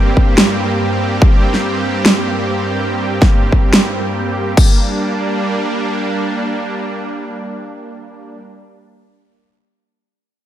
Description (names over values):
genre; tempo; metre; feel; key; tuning
heavy wobble dubstep; 143 BPM; 4/4; swing 54% on 16ths, half-time; G minor; A4 = 440 Hz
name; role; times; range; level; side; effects
supersaw pad; sustained chords; 0.0-8.4 s; G2 to G4; -18 LUFS; right 1 dB; sidechain pumping
electronic kick drum; drums; 0.2-4.7 s; none; -11 LUFS; equal; overdrive
dubstep drum kit; drums; 0.4-4.7 s; crash cymbal, snare drum; -15 LUFS; equal; none
room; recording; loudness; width
light reverb; none; -13 LUFS; side -12 dB against mid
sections
0.0-4.6 A section; 4.6-7.9 B section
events
none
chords
0.0 Gm